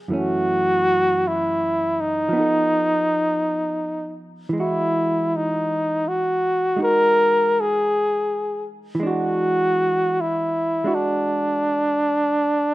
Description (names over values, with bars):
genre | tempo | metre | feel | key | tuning
jazz ballad | 54 BPM | 4/4 | swing 66% on 8ths | unclear | A4 = 440 Hz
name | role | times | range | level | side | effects
hollow-body jazz guitar | accompaniment | 0.0-12.7 s | F#2 to A4 | -26 LUFS | right 2 dB | none
warm flugelhorn | melody | 0.2-12.7 s | D4 to A#4 | -19 LUFS | equal | none
room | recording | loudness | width
studio ambience | rough home demo mix | -18 LUFS | side -17 dB against mid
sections
0.0-12.7 A section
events
none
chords
0.1 F#m7; 2.3 F7#11; 4.5 Emaj9; 9.0 E9